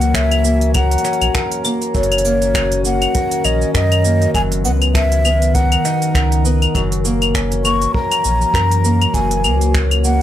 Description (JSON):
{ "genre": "folktronica", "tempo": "100 BPM", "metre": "4/4", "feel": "swing 56% on 16ths", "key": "F# mixolydian", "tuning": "A4 = 441 Hz", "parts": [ { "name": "breathy mellow concert flute", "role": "melody", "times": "0.0-10.2 s", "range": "C#5 to C#6", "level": "-20 LUFS", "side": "equal", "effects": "digital delay" }, { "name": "warbly tape-like pad", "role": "sustained chords", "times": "0.0-10.2 s", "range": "D#3 to A#4", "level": "-23 LUFS", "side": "left 3 dB", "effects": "chorus, built-in reverb, vintage 12-bit sampler grit" }, { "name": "fingerpicked twelve-string acoustic guitar", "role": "arpeggios", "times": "0.0-10.2 s", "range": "F#2 to A#4", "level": "-21 LUFS", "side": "equal", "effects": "digital delay" }, { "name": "warm sub bass", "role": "bass", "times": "0.0-10.2 s", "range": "F#1 to F#2", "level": "-17 LUFS", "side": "equal", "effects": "none" }, { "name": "organic electronic drum kit", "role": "drums", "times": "0.0-10.2 s", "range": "cabasa, claves, finger snaps, hi-hat", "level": "-21 LUFS", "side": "left 1 dB", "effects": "none" }, { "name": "kick drum", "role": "drums", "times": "0.1-9.9 s", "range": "none", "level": "-22 LUFS", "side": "equal", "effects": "none" } ], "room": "light reverb", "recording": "none", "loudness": "-13 LUFS", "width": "side -11 dB against mid", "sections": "0.0-10.2 A section", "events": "none", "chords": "0.0 F#7; 1.9 D#m7/F#; 4.3 Bmaj7/F#; 6.7 F#7" }